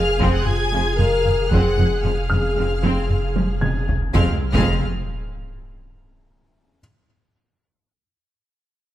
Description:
cinematic, hybrid orchestral and electronic film score; 114 BPM; 5/4; straight; F phrygian; A4 = 441 Hz
rich symphonic violin section; melody; 0.0-4.8 s; F6 to Ab6; -29 LUFS; left 2 dB
rich symphonic violin section; second line; 0.0-4.8 s; F5 to Ab5; -32 LUFS; left 3 dB
rich symphonic viola section; accompaniment; 0.0-4.8 s; F3 to Ab4; -27 LUFS; right 1 dB
mellow French horn section; sustained chords; 0.0-4.4 s; Ab3 to Bb4; -25 LUFS; left 3 dB
punchy sub bass; bass; 0.0-4.8 s; F1; -24 LUFS; equal
felt-muted upright piano; texture; 0.0-4.2 s; F6 to Ab6; -30 LUFS; left 1 dB; tape echo
rich symphonic cello section; bass; 0.2-4.8 s; F2; -26 LUFS; right 1 dB
rich symphonic double bass section; bass; 0.2-4.8 s; F1; -25 LUFS; right 2 dB
taiko ensemble; drums; 0.2-5.6 s; -23 LUFS; equal
sub drop; sound effects; 4.2-6.8 s; -27 LUFS; equal
light reverb; -17 LUFS; side -13 dB against mid
0.0-4.1 A section; 4.1-6.8 B section
drum fill 3.4-4.1; impact 4.1-6.8
0.0 Fm
0.46 0.99 | 1.52 2.04 2.57 3.10 3.62 | 4.15 4.67 5.20 5.73 6.25

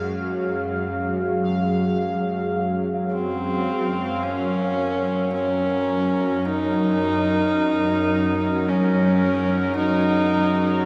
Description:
dark ambient drone; 54 BPM; 4/4; straight; A4 = 439 Hz
dark analog pad; sustained chords; 0.0-10.9 s; F#4 to G#4; -33 LUFS; equal; chorus, phaser
tubular bells; arpeggios; 0.0-10.9 s; barely audible
bowed-like drone; drone; 0.0-10.9 s; F#2 to F#3; -26 LUFS; equal; built-in reverb
bubbling stepped-filter texture; texture; 0.0-10.9 s; A#4 to E#5; -32 LUFS; equal; chorus, built-in reverb
clear horsehead fiddle; melody; 3.1-10.9 s; B#3 to D#4; -24 LUFS; equal; tape echo
wet cathedral reverb, RT60 5.2 s; dark, warm production; -22 LUFS; mono
0.0-4.2 A section; 4.2-10.9 B section
0.0 F#sus2
0.87 1.99 3.10 | 4.21 5.32 6.43 7.54 | 8.65 9.76

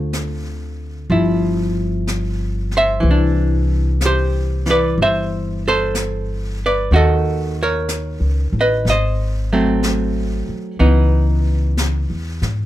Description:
jazz ballad; 62 BPM; 4/4; swing 68% on 8ths; A4 = 440 Hz
archtop guitar, miked and amplified; accompaniment; 0.0-12.7 s; D3 to E5; -19 LUFS; equal
upright bass; bass; 0.0-12.7 s; G1 to G#2; -18 LUFS; equal
jazz brush drum kit; drums; 0.1-12.7 s; brushed snare drum, hi-hat, snare drum; -29 LUFS; left 2 dB
little or no reverb; close, detailed microphones; -15 LUFS; side -14 dB against mid
0.0-12.7 A section
0.0 Dm7; 1.1 Cadd11/G; 3.0 Cmaj9; 6.9 D#m7b5; 8.9 G#7b9; 10.8 C#m9
0.13 1.10 2.07 | 3.03 4.00 4.97 5.94 | 6.91 7.88 8.86 9.83 | 10.80 11.77

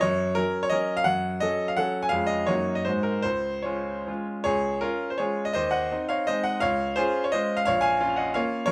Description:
classical, romantic triple-time dance for piano with dotted rhythms; 140-186 BPM; 3/4; rubato; Db major; A4 = 440 Hz
clear grand piano; solo; 0.0-8.7 s; Bb1 to Ab5; -26 LUFS; equal
light reverb; -26 LUFS; mono
0.0-4.5 A section; 4.5-8.7 B section
0.0 Gb; 1.1 Gbm; 2.1 Db/F; 2.5 Ebm7/Gb; 2.9 Ab7; 3.3 Db; 5.5 Ab7/Eb; 6.6 Db; 7.7 Bbm
| 0.05 0.39 0.74 | 1.07 1.43 1.79 | 2.13 2.49 2.88 | 3.25 3.67 4.08 | 4.46 4.83 5.20 | 5.55 5.91 6.28 | 6.62 6.98 7.33 | 7.67 8.01 8.36 | 8.68

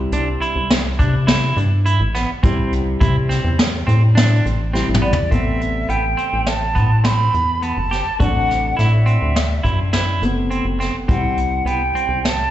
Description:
progressive instrumental, band music in an uneven meter; 104 BPM; 5/4; straight; A dorian; A4 = 442 Hz
warm concert grand piano; accompaniment; 0.0-12.5 s; C3 to E4; -26 LUFS; left 2 dB; slapback echo
rubbery square bass; bass; 0.0-12.5 s; F#1 to C3; -18 LUFS; equal
clean electric guitar; arpeggios; 0.1-12.3 s; B3 to G4; -24 LUFS; right 3 dB; harmonic tremolo, slapback echo, digital delay
vintage brush drum kit; drums; 0.1-12.4 s; hi-hat, kick drum, snare drum, toms; -20 LUFS; equal
concert flute; melody; 5.0-12.5 s; D5 to B5; -21 LUFS; right 1 dB; digital delay
light reverb, small room ambience; live gig heard through the venue's PA, club reverb, nothing above 8.0 kHz; -15 LUFS; side -12 dB against mid
0.0-5.3 A section; 5.3-12.5 B section
drum fill 4.7-5.3
0.0 C; 5.3 Amadd9; 11.1 C
0.12 0.70 1.27 1.85 | 2.43 3.00 3.58 4.16 4.73 | 5.31 5.89 6.46 7.04 7.62 | 8.20 8.77 9.35 9.93 10.51 | 11.08 11.66 12.24

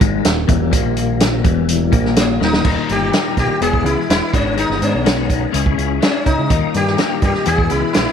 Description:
psychedelic rock; 125 BPM; 4/4; straight; Eb phrygian dominant; A4 = 439 Hz
mellow tonewheel organ; sustained chords; 0.0-8.1 s; Eb3 to E6; -28 LUFS; right 14 dB; slow rotary speaker, chorus vibrato
twelve-string electric guitar; riff; 0.0-8.1 s; Eb2 to Ab4; -20 LUFS; left 14 dB; rotary speaker
growling fingered electric bass; bass; 0.0-8.1 s; Eb1 to Db3; -20 LUFS; right 2 dB; overdrive
vintage drum kit; drums; 0.0-8.1 s; crash cymbal, hi-hat, kick drum, snare drum; -17 LUFS; right 2 dB
sitar; melody; 2.2-8.1 s; Db4 to G#4; -20 LUFS; left 1 dB; slapback echo
light reverb, small room ambience; 1960s-style stereo with parts hard left and right; -14 LUFS; side -8 dB against mid
0.0-2.6 A section; 2.6-8.1 B section
drum fill 2.4
0.0 Eb; 3.6 E; 4.3 Abm; 5.5 Dbm; 6.5 Eb; 7.5 E
0.25 | 0.73 1.21 1.69 2.17 | 2.65 3.13 3.61 4.09 | 4.57 5.05 5.54 6.02 | 6.50 6.98 7.46 7.94

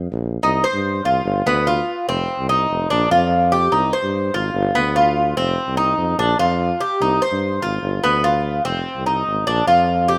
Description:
latin, Cuban son and guajira; 146 BPM; 4/4; straight; C minor; A4 = 442 Hz
warm tuba; bass; 0.0-10.2 s; F1 to G2; -24 LUFS; equal
Cuban tres; arpeggios; 0.4-10.2 s; B3 to C5; -20 LUFS; equal
light reverb, small room reverb; rough home demo mix; -19 LUFS; mono
0.4-10.2 A section
0.4 Cm; 1.3 G7; 2.1 F5; 2.9 Bb; 3.7 Cm; 4.5 G7; 5.4 F5; 6.2 Bb; 7.0 Cm; 7.8 G7; 8.7 Fm7; 9.5 Bb
0.02 | 0.43 0.85 1.26 1.67 | 2.08 2.49 2.90 3.31 | 3.73 4.14 4.55 4.96 | 5.37 5.78 6.19 6.60 | 7.01 7.42 7.83 8.24 | 8.65 9.06 9.47 9.88

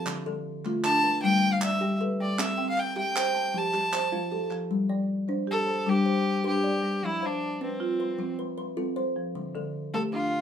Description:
southern african traditional, mbira-style interlocking cycle; 103 BPM (dotted quarters); 12/8; straight; A4 = 440 Hz
rich violin; melody; 0.0-10.4 s; C4 to A5; -27 LUFS; equal
kalimba; arpeggios; 0.0-10.3 s; D3 to A5; -29 LUFS; left 4 dB
marimba with medium mallets; arpeggios; 0.0-10.4 s; D3 to E5; -32 LUFS; right 4 dB
group handclap; percussion; 0.1-4.6 s; -33 LUFS; right 3 dB
moderate studio reverb, RT60 0.6 s; minimal, uncompressed stereo recording; -25 LUFS; side -8 dB against mid
0.0-4.7 A section; 4.7-10.4 A section
0.1 Dm; 1.2 G; 2.4 C; 3.5 F; 9.4 Dm
| 0.07 0.65 1.23 1.81 | 2.39 2.97 3.55 4.13 | 4.71 5.29 5.87 6.45 | 7.03 7.61 8.19 8.77 | 9.36 9.94

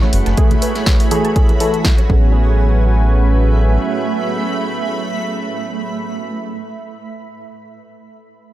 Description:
deep house; 122 BPM; 4/4; swing 54% on 16ths; A major; A4 = 440 Hz
warm analog pad; sustained chords; 0.0-6.5 s; A3 to G#5; -24 LUFS; right 1 dB; chorus, sidechain pumping
soft round pluck; arpeggios; 0.0-2.6 s; E4 to A5; -29 LUFS; right 4 dB; chorus, sidechain pumping, analog delay
congas; percussion; 0.0-2.1 s; -27 LUFS; right 1 dB
granular cloud pad; texture; 0.0-6.9 s; A3 to B5; -23 LUFS; right 3 dB; built-in reverb, sidechain pumping
round analog bass; bass; 0.1-3.8 s; F#1 to A1; -13 LUFS; equal; tube saturation, sidechain pumping
punchy analog drum machine; drums; 0.1-2.1 s; hi-hat, snare drum; -22 LUFS; equal
warm analog keys; stabs; 0.4-6.5 s; E3 to A4; -22 LUFS; right 1 dB; chorus, sidechain pumping, low-pass filter, analog delay
electronic kick drum; drums; 0.4-2.2 s; -14 LUFS; equal
light reverb, digital ambience; -13 LUFS; side -14 dB against mid
0.0-2.3 A section; 2.3-6.3 B section
filter sweep on synth keys 0.0-2.3; filter sweep on synth arpeggio sound 0.0-2.3
0.1 F#m9; 2.1 Amaj13
| 0.38 0.87 1.36 1.85 | 2.34 2.83 3.33 3.82 | 4.31 4.80 5.29 5.79

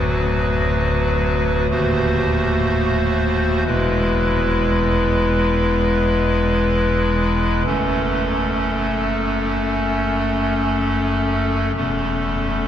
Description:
classical, chorale-style piece for pipe organ; free time; A4 = 440 Hz
pipe organ, clarinet reed; solo; 0.0-12.7 s; D1 to B#4; -17 LUFS; equal
wet cathedral reverb, RT60 6.5 s; heard from further back in the room, vinyl crackle; -17 LUFS; side -10 dB against mid
0.0-12.7 A section
0.0 Bm/D; 1.7 D#dim7; 3.7 E; 7.7 F#m; 11.8 A/E
free time

